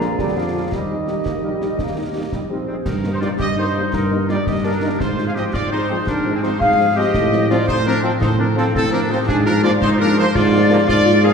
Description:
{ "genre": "military-style march for wind band", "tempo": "112 BPM (dotted quarters)", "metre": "6/8", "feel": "straight", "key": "Eb major", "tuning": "A4 = 440 Hz", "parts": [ { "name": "mellow trumpet section", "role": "melody", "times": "0.0-11.3 s", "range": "Ab4 to F5", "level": "-24 LUFS", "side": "equal", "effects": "none" }, { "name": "clear woodwind section", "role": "second line", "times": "0.0-11.3 s", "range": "C4 to Eb5", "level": "-24 LUFS", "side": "left 1 dB", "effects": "none" }, { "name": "large flute ensemble", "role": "second line", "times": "0.0-11.3 s", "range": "Ab4 to Bb5", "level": "-24 LUFS", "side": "left 2 dB", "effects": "none" }, { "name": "warm euphonium", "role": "second line", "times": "0.0-2.6 s", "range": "Eb3 to Bb3", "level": "-26 LUFS", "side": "right 3 dB", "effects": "none" }, { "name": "mellow French horn section", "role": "accompaniment", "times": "0.0-11.3 s", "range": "F3 to G4", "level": "-25 LUFS", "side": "left 3 dB", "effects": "none" }, { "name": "warm trombone section", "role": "sustained chords", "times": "0.0-11.3 s", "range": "D3 to Eb4", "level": "-28 LUFS", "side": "right 2 dB", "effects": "none" }, { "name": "mellow tuba", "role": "bass", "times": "0.0-11.3 s", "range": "Bb1 to A2", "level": "-20 LUFS", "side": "right 1 dB", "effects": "none" }, { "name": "concert snare drum, concert bass drum and clash cymbals", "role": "drums", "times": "0.0-11.1 s", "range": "none", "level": "-27 LUFS", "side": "left 1 dB", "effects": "none" } ], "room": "wet concert hall reverb, RT60 2.0 s", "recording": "recorded in a church or concert hall", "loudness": "-16 LUFS", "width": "side -6 dB against mid", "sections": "0.0-2.9 A section; 2.9-11.3 B section", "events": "none", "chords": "0.0 Bb7; 0.7 Eb; 2.9 Eb/G; 5.0 Fm/Ab; 7.1 F7/A; 9.3 Bb7/Ab" }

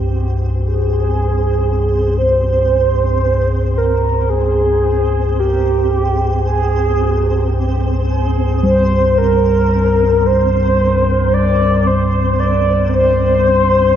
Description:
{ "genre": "dark ambient drone", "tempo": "56 BPM", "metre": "4/4", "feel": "straight", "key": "unclear", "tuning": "A4 = 438 Hz", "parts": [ { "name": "deep rumbling drone", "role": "drone", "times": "0.0-14.0 s", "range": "C2 to G2", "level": "-16 LUFS", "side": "equal", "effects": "built-in reverb, lush chorus" }, { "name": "flickering grainy texture", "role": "texture", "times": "0.0-14.0 s", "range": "C4 to C5", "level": "-25 LUFS", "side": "equal", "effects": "built-in reverb" }, { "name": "mellow horn-like synth lead", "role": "melody", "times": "0.6-14.0 s", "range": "G4 to D5", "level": "-15 LUFS", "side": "right 1 dB", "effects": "wide subtle chorus, vintage 12-bit sampler grit, tape echo" }, { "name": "bronze singing bowl", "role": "arpeggios", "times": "8.6-14.0 s", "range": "G3", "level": "-19 LUFS", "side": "left 1 dB", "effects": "tape echo" } ], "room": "wet spring reverb, RT60 2.9 s", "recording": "echo-heavy mix", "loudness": "-12 LUFS", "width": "side -10 dB against mid", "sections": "0.0-14.0 A section", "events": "fade-in on synth texture 0.0-14.0", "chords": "0.0 C5" }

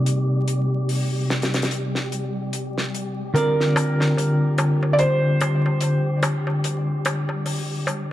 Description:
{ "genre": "trip hop", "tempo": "73 BPM", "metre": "4/4", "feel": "swing 58% on 16ths", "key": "unclear", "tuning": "A4 = 440 Hz", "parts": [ { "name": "clean electric guitar", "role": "accompaniment", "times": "0.0-8.1 s", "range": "C3 to D5", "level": "-22 LUFS", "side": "equal", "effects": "tremolo" }, { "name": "wind-like tuned noise texture", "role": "texture", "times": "0.0-8.1 s", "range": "G3 to G4", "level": "-31 LUFS", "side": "left 1 dB", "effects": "built-in reverb" }, { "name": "damped 70s drum kit", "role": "drums", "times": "0.1-8.1 s", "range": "hi-hat, snare drum", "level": "-28 LUFS", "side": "left 1 dB", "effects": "high-pass filter on hats, small room ambience, high-pass filter on snare, high-pass filter on room" }, { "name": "felt-muted upright piano", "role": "melody", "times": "3.3-6.2 s", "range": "Bb4 to D5", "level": "-24 LUFS", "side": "right 2 dB", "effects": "tape echo" }, { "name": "darbuka", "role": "percussion", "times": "3.4-8.1 s", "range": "none", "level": "-27 LUFS", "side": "equal", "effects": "none" } ], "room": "wet echo chamber reverb, RT60 2.4 s", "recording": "dark, warm production, vinyl crackle", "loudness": "-20 LUFS", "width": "side -14 dB against mid", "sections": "0.0-8.1 A section", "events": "filter sweep on clean electric guitar 0.0-8.1", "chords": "0.0 Cm9; 3.4 Dm7" }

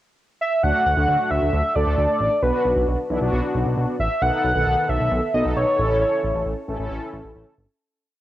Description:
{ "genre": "synth-pop", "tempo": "134 BPM", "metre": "4/4", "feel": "straight", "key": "D major", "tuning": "A4 = 440 Hz", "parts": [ { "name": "octave-doubled lead", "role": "melody", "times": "0.4-6.4 s", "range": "B4 to F#5", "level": "-21 LUFS", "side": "equal", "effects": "chorus" }, { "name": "mellow synth brass", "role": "accompaniment", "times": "0.6-7.5 s", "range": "D#3 to A4", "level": "-25 LUFS", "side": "equal", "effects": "chorus" }, { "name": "chorused synth bass", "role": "bass", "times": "0.6-7.7 s", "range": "G1 to D2", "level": "-23 LUFS", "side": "equal", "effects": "tube saturation" } ], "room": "moderate spring reverb, RT60 2.3 s", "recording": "home recording on cassette", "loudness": "-18 LUFS", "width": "side -14 dB against mid", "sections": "0.0-0.6 pickup bar; 0.6-7.8 verse", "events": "fade-out 6.0-7.8", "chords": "0.0 N.C.; 0.6 D; 2.4 Bm; 4.2 B7; 5.8 A" }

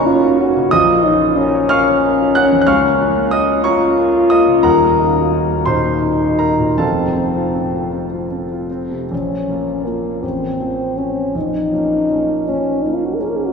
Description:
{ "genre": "classical, romantic duo for French horn and grand piano", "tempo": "50-63 BPM (dotted quarters)", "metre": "6/8", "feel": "rubato", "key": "Bb minor", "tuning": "A4 = 438 Hz", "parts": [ { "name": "mellow French horn", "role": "melody", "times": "0.0-13.5 s", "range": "Bb3 to Bb4", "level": "-16 LUFS", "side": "left 2 dB", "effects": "none" }, { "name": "dark concert grand piano", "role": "accompaniment", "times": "0.0-13.5 s", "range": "Eb1 to Gb6", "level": "-16 LUFS", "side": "right 2 dB", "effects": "none" } ], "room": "wet cathedral reverb, RT60 4.7 s", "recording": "recorded in a church or concert hall", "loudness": "-13 LUFS", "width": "side -5 dB against mid", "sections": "0.0-9.1 A section; 9.1-13.5 B section", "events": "none", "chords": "0.0 Gb; 0.7 Bbm; 2.7 Bbm/Db; 4.7 Ebm; 6.8 F; 9.1 Bbm; 10.2 F/A; 11.4 Bbm" }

